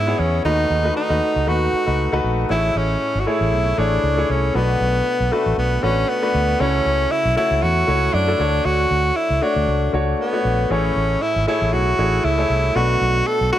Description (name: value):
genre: 1980s-style pop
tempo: 117 BPM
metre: 4/4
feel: swing 55% on 16ths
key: unclear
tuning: A4 = 440 Hz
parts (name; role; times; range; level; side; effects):
- clear tenor saxophone; melody; 0.0-13.6 s; A3 to A4; -20 LUFS; equal; digital delay
- clear baby grand piano; accompaniment; 0.0-13.6 s; A2 to C#5; -22 LUFS; left 2 dB; none
- vintage muted fingered electric bass; bass; 0.0-13.5 s; G#1 to G#2; -21 LUFS; equal; none
room: moderate plate reverb, RT60 3.6 s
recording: none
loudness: -16 LUFS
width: side -12 dB against mid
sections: 0.0-2.5 A section; 2.5-13.6 B section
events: none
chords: 0.4 B7; 2.5 Amaj7; 4.5 Bm7; 6.6 F#m7; 8.4 Dmaj7; 10.7 Amaj7; 12.8 Bm7